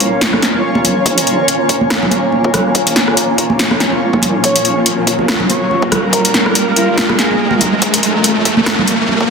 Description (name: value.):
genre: deep dubstep.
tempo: 142 BPM.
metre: 4/4.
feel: swing 56% on 16ths, half-time.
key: Bb minor.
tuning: A4 = 439 Hz.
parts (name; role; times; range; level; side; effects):
granular cloud pad; sustained chords; 0.0-9.3 s; Bb3 to Db5; -18 LUFS; equal; built-in reverb.
deep soft wobble bass; bass; 0.0-9.3 s; Ab1 to C2; -26 LUFS; equal; none.
deep house drum kit; drums; 0.0-9.0 s; hi-hat, rim click, snare drum; -15 LUFS; left 1 dB; overdrive.
riser; sound effects; 1.0-9.3 s; none; -19 LUFS; right 1 dB; none.
wind-like tuned noise texture; texture; 0.0-9.3 s; Db4; -21 LUFS; right 1 dB; built-in reverb.
congas; percussion; 0.3-9.2 s; none; -19 LUFS; right 2 dB; dub echo.
electronic kick drum; drums; 1.1-9.3 s; none; -23 LUFS; equal; overdrive, high-pass filter on kick, high-pass filter on room.
breathy flute-like synth lead; melody; 4.4-7.6 s; F4 to Db5; -21 LUFS; equal; analog chorus, dub echo.
room: moderate lush hall reverb, RT60 1.9 s.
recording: dense, heavily limited modern master.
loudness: -11 LUFS.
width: side -5 dB against mid.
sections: 0.0-9.3 A section.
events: build-up 0.0-9.3; riser 1.0-9.3.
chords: 0.0 Bbm.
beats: 0.21 0.64 | 1.06 1.48 1.90 2.33 | 2.75 3.17 3.59 4.02 | 4.44 4.86 5.28 5.71 | 6.13 6.55 6.97 7.40 | 7.82 8.24 8.66 9.09.